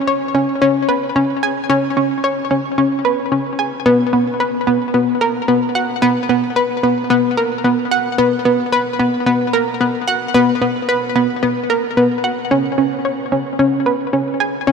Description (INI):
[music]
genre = ambient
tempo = 111 BPM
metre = 4/4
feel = straight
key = unclear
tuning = A4 = 439 Hz
[part]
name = analog pluck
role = solo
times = 0.1-14.7 s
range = B3 to G#5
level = -14 LUFS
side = equal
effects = chorus, ping-pong delay
[sound]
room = wet huge ambient reverb, RT60 7.9 s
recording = none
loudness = -14 LUFS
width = side -5 dB against mid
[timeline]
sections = 0.0-14.7 A section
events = none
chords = none